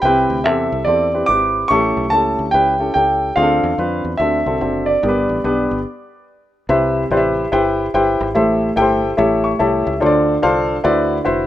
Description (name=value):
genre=uptempo gospel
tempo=144 BPM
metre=4/4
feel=swing 64% on 8ths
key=C major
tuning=A4 = 442 Hz
part: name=warm grand piano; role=melody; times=0.0-6.2 s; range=D5 to D6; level=-17 LUFS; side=right 1 dB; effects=plate reverb
part: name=warm upright piano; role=accompaniment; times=0.0-11.5 s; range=G2 to C#6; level=-16 LUFS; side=left 1 dB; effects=none
part: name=fingered electric bass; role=bass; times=0.0-11.5 s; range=F1 to F2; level=-25 LUFS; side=equal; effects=none
room=wet studio reverb, RT60 0.6 s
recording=rough home demo mix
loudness=-14 LUFS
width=side -13 dB against mid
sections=0.0-6.7 A section; 6.7-11.5 B section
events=stop 5.9-6.7; upright piano fill 9.2-10.0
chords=0.0 Cmaj7; 1.7 A7; 3.4 Dm7; 4.2 D7; 5.0 G; 6.7 Cmaj7; 8.4 Am7; 9.2 A7; 10.0 Dm7; 10.8 D13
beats=| 0.04 0.45 0.87 1.28 | 1.70 2.12 2.54 2.95 | 3.37 3.78 4.20 4.62 | 5.03 5.45 5.86 6.28 | 6.69 7.11 7.52 7.94 | 8.35 8.77 9.18 9.60 | 10.01 10.43 10.84 11.26